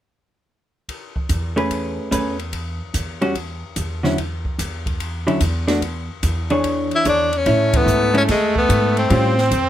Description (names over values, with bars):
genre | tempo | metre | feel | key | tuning
jazz, small-group swing and bop | 146 BPM | 4/4 | swing 67% on 8ths | A major | A4 = 440 Hz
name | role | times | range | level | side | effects
open jazz drum kit | drums | 0.9-9.6 s | hi-hat, kick drum, ride cymbal, snare drum | -27 LUFS | equal | none
upright bass | bass | 1.3-9.7 s | E2 to A2 | -23 LUFS | equal | none
vintage hollow-body jazz guitar | accompaniment | 1.6-9.4 s | D3 to C#5 | -20 LUFS | equal | none
edgy tenor saxophone | melody | 7.0-9.7 s | G#3 to E4 | -18 LUFS | left 3 dB | none
clear trumpet | second line | 7.5-9.7 s | A3 to B#3 | -22 LUFS | right 5 dB | none
room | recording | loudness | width
light reverb | none | -17 LUFS | side -11 dB against mid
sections
0.9-7.5 A section; 7.5-9.7 B section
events
band accent 7.7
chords
0.9 Amaj9; 2.5 Emadd9; 3.4 Dmaj9/E; 4.2 Dadd9; 5.8 E7; 7.5 Amaj7; 9.1 A7alt